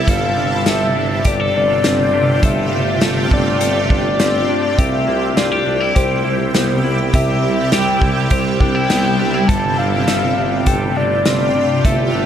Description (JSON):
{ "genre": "dream pop", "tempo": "102 BPM", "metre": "4/4", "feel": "straight", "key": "C major", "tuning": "A4 = 440 Hz", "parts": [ { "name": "soft octave-layered synth lead", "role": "melody", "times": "0.0-12.3 s", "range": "C5 to A5", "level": "-20 LUFS", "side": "left 2 dB", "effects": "chorus, digital delay" }, { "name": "shimmering ambient pad", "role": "sustained chords", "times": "0.0-12.3 s", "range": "C3 to G4", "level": "-19 LUFS", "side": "right 1 dB", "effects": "chorus, built-in reverb, phaser" }, { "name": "semi-hollow electric guitar", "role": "arpeggios", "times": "0.0-12.3 s", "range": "G2 to A4", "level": "-21 LUFS", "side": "left 1 dB", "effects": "wide subtle chorus, digital delay" }, { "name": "warm tuba", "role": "bass", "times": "0.0-12.3 s", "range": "G1 to C2", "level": "-22 LUFS", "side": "equal", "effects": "none" }, { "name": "loose indie drum kit", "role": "drums", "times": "0.1-12.0 s", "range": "hi-hat, kick drum, snare drum", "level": "-18 LUFS", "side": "equal", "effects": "none" } ], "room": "moderate lush hall reverb, RT60 1.9 s", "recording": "none", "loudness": "-13 LUFS", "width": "side -9 dB against mid", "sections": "0.0-12.3 A section", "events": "none", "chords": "0.1 G9sus4; 4.8 Cmaj7; 9.5 G9sus4" }